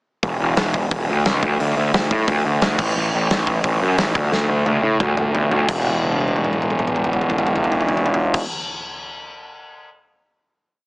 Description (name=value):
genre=punk rock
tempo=176 BPM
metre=4/4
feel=straight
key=unclear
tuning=A4 = 439 Hz
part: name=fuzz picked electric bass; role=bass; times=0.2-8.4 s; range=E1 to A2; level=-18 LUFS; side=equal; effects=overdrive
part: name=big rock drum kit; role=drums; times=0.2-9.9 s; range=crash cymbal, hi-hat, kick drum, snare drum, toms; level=-22 LUFS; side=equal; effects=none
room=little or no reverb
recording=heavily compressed radio sound, small speaker sound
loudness=-17 LUFS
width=side -26 dB against mid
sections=0.2-5.7 riff; 5.7-8.4 final note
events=drum fill 4.3-5.7, 5.9-8.4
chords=none